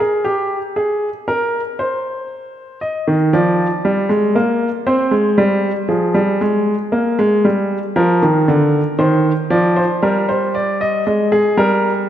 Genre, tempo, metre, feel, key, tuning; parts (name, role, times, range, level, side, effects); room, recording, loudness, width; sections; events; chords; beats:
classical, baroque-style two-part invention for grand piano; 58 BPM; 4/4; straight; Ab major; A4 = 442 Hz
clear baby grand piano; solo; 0.0-12.1 s; D3 to Eb5; -14 LUFS; equal
wet concert hall reverb, RT60 2.1 s; -14 LUFS; side -10 dB against mid
0.0-12.1 A section
0.0 N.C.; 2.8 Eb; 4.9 Ab; 6.9 Bb; 9.0 Eb; 11.1 Ab5
0.76 1.79 | 2.83 3.86 4.88 5.91 | 6.94 7.97 9.00 10.03 | 11.06 12.09